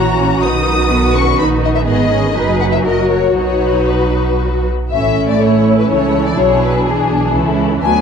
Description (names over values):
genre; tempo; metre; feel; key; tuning
quick classical-period movement for string orchestra; 123 BPM; 3/4; rubato; B major, A major from 4.9 s; A4 = 440 Hz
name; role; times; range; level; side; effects
warm studio violin section; melody; 0.0-8.0 s; G#4 to D#6; -17 LUFS; left 7 dB; none
warm studio violin section; second line; 0.0-8.0 s; C#4 to C#5; -20 LUFS; left 4 dB; none
warm studio viola section; accompaniment; 0.0-8.0 s; D#3 to F#4; -16 LUFS; right 2 dB; none
rich studio double bass section; bass; 0.0-8.0 s; F#1 to D2; -18 LUFS; right 3 dB; none
rich symphonic cello section; bass; 0.0-8.0 s; C#2 to B4; -21 LUFS; right 4 dB; none
room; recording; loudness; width
moderate scoring stage reverb, RT60 1.4 s; dark, warm production; -11 LUFS; side -6 dB against mid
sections
0.0-4.9 A section; 4.9-8.0 B section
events
none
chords
0.4 B; 1.9 G#m; 2.4 B/F#; 2.9 F#; 3.4 B; 4.9 A; 6.4 E7/B; 7.4 A/C#